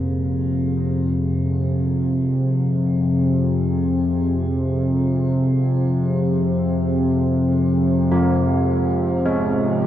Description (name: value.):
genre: dark ambient drone.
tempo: free time.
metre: none.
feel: none.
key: F minor.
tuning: A4 = 444 Hz.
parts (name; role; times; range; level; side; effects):
dark analog pad; sustained chords; 0.0-9.9 s; C4 to F5; -26 LUFS; right 1 dB; chorus, shimmer reverb.
carillon bells; arpeggios; 0.0-9.9 s; F3 to Bb3; -26 LUFS; right 1 dB; shimmer reverb.
analog drone; drone; 0.0-9.9 s; F2 to C3; -18 LUFS; left 1 dB; chorus.
room: wet cathedral reverb, RT60 6.4 s.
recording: worn, warbling old tape, cassette tape, warbly pitch drift.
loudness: -17 LUFS.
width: side -11 dB against mid.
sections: 0.0-9.9 A section.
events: fade-in on analog synth pad 0.0-9.9.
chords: 0.0 Fm.